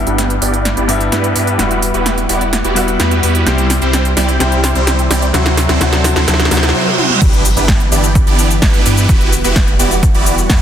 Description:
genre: EDM, festival progressive house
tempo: 128 BPM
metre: 4/4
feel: straight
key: G major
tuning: A4 = 440 Hz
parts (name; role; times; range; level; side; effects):
- clear baby grand piano; accompaniment; 0.0-7.2 s; G2 to G4; -18 LUFS; left 4 dB; sidechain pumping, ping-pong delay
- lush unison pad; sustained chords; 0.0-10.6 s; E3 to A5; -24 LUFS; right 1 dB; chorus, phaser, sidechain pumping
- saturated sub bass; bass; 0.0-10.6 s; E1 to G2; -17 LUFS; equal; sidechain pumping
- riser, reverse cymbal and impact; sound effects; 2.2-9.1 s; none; -23 LUFS; right 3 dB; none
- supersaw chords; riff; 0.1-10.6 s; F#3 to D5; -17 LUFS; right 2 dB; phaser, sidechain pumping, low-pass filter, ping-pong delay
- big-room dance drum kit; drums; 0.1-10.6 s; crash cymbal, hi-hat, shaker, snare drum, toms; -18 LUFS; equal; overdrive
- electronic kick drum; drums; 7.2-10.6 s; none; -12 LUFS; equal; overdrive
room: light reverb, digital ambience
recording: dense, heavily limited modern master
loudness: -10 LUFS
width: side -9 dB against mid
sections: 0.0-7.2 A section; 7.2-10.6 B section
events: build-up 0.0-7.2; drum fill 0.0-6.7, 6.9-7.2; filter sweep on supersaw synth 0.0-7.2; reverse cymbal 6.3-7.2; drop 7.2-10.6; impact 7.2-9.1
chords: 0.0 G6; 1.6 Emadd9; 3.5 C; 5.3 D; 7.2 G6; 9.1 Emadd9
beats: 0.18 0.65 1.12 | 1.59 2.06 2.53 3.00 | 3.47 3.94 4.40 4.87 | 5.34 5.81 6.28 6.75 | 7.22 7.68 8.15 8.62 | 9.09 9.56 10.03 10.50

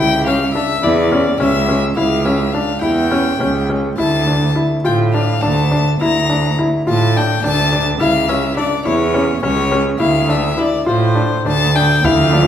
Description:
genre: contemporary instrumental, chamber music in an uneven meter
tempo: 209 BPM (eighths)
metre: 7/8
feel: straight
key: D harmonic minor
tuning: A4 = 439 Hz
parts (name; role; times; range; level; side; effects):
- bright violin; melody; 0.0-12.5 s; C5 to Bb5; -19 LUFS; left 5 dB; none
- felt-muted upright piano; arpeggios; 0.0-12.5 s; C#4 to F4; -17 LUFS; left 2 dB; none
- rich cello; bass; 0.0-12.5 s; C#2 to A2; -17 LUFS; right 2 dB; none
- shimmering ambient pad; sustained chords; 12.2-12.5 s; F3 to F4; -20 LUFS; right 3 dB; chorus, built-in reverb
- frame drum; percussion; 12.0-12.5 s; none; -23 LUFS; right 3 dB; none
room: wet recital hall reverb, RT60 1.4 s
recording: recorded in a church or concert hall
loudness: -13 LUFS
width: side -10 dB against mid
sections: 0.0-12.0 A section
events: none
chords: 0.0 C#dim; 4.0 Dsus2; 8.0 C#m; 10.0 Dmadd9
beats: 0.27 0.55 0.83 1.12 1.40 1.69 | 1.97 2.26 2.54 2.83 3.12 3.41 3.70 | 3.99 4.28 4.57 4.86 5.15 5.43 5.72 | 6.01 6.30 6.59 6.87 7.16 7.44 7.73 | 8.01 8.29 8.58 8.86 9.15 9.43 9.72 | 10.00 10.29 10.57 10.86 11.15 11.45 11.74 | 12.03 12.32

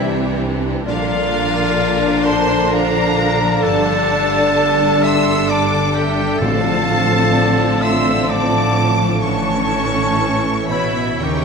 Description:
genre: cinematic, emotional film score for orchestra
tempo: 64 BPM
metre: 3/4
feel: rubato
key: unclear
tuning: A4 = 440 Hz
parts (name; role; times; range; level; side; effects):
- rich studio violin section; melody; 0.0-11.4 s; E5 to E6; -23 LUFS; left 3 dB; none
- hollow small flute group; second line; 0.0-11.4 s; C5 to C6; -22 LUFS; right 2 dB; none
- rich studio violin section; second line; 0.0-11.4 s; C#4 to Db5; -25 LUFS; left 2 dB; none
- warm oboe; second line; 0.0-11.4 s; E4 to E5; -23 LUFS; right 1 dB; none
- rich studio viola section; accompaniment; 0.0-11.4 s; D3 to D4; -22 LUFS; right 1 dB; none
- mellow French horn section; sustained chords; 0.0-11.4 s; D3 to D4; -23 LUFS; left 3 dB; none
- concert harp; arpeggios; 0.0-11.4 s; G2 to D5; -24 LUFS; left 5 dB; none
- dark studio double bass section; bass; 0.0-11.4 s; G1 to Eb2; -24 LUFS; right 4 dB; none
- rich studio cello section; bass; 0.0-11.4 s; Eb2 to Db3; -25 LUFS; right 3 dB; none
- timpani; percussion; 6.4-7.8 s; A2; -25 LUFS; left 2 dB; none
room: wet scoring stage reverb, RT60 2.1 s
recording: none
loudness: -14 LUFS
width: side -5 dB against mid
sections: 0.0-11.4 A section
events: none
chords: 0.0 Cadd9; 0.9 Bb; 3.6 Gsus2; 6.4 F6/A; 9.2 A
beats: | 0.86 1.79 2.72 | 3.65 4.58 5.50 | 6.42 7.36 8.29 | 9.24 10.20 11.21

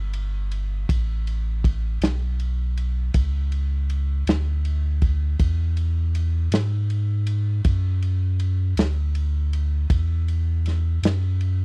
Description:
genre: slow blues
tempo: 53 BPM (dotted quarters)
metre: 12/8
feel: straight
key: A major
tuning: A4 = 440 Hz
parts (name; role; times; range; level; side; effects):
- pure sine sub bass; bass; 0.0-11.6 s; G1 to G#2; -21 LUFS; equal; none
- vintage drum kit; drums; 0.1-11.6 s; kick drum, ride cymbal, snare drum; -22 LUFS; equal; none
room: little or no reverb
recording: dry, close 1970s-style studio recording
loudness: -20 LUFS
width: side -34 dB against mid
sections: 0.0-11.6 A section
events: none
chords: none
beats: | 0.89 2.02 3.14 4.27 | 5.40 6.53 7.65 8.78 | 9.90 11.03

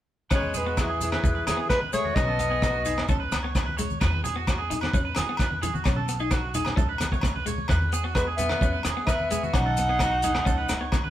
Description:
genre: highlife guitar band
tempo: 130 BPM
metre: 4/4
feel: straight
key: E major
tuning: A4 = 440 Hz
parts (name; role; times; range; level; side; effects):
- breathy clarinet; melody; 0.3-3.1, 8.2-10.9 s; G#4 to F#5; -27 LUFS; equal; none
- bright tenor saxophone; second line; 0.3-3.1, 8.2-10.9 s; E3 to D#4; -34 LUFS; left 3 dB; none
- clean electric guitar; accompaniment; 0.3-11.0 s; E3 to D#4; -34 LUFS; left 4 dB; none
- electric guitar at the edge of break-up; arpeggios; 0.3-11.1 s; F#4 to C#5; -31 LUFS; right 5 dB; vibrato effect
- upright bass; bass; 0.3-11.1 s; B1 to E2; -31 LUFS; equal; none
- crunchy breakbeat drum kit; drums; 0.3-11.0 s; hi-hat, kick drum, rim click; -27 LUFS; equal; none
- agogo bells; percussion; 0.3-11.0 s; none; -37 LUFS; left 3 dB; none
- maracas; percussion; 0.3-11.0 s; none; -40 LUFS; left 5 dB; none
- congas; percussion; 0.4-11.1 s; none; -35 LUFS; right 1 dB; none
room: light reverb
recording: band playing live in one room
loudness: -23 LUFS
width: side -12 dB against mid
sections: 0.3-11.1 A section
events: none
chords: 0.3 E; 2.2 B; 3.1 N.C.; 4.0 E; 5.9 B; 6.8 N.C.; 7.7 E; 9.5 B; 10.5 A/C#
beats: | 0.31 0.78 1.24 1.70 | 2.16 2.63 3.09 3.55 | 4.01 4.47 4.93 5.39 | 5.86 6.32 6.78 7.24 | 7.70 8.16 8.62 9.08 | 9.54 10.00 10.46 10.92

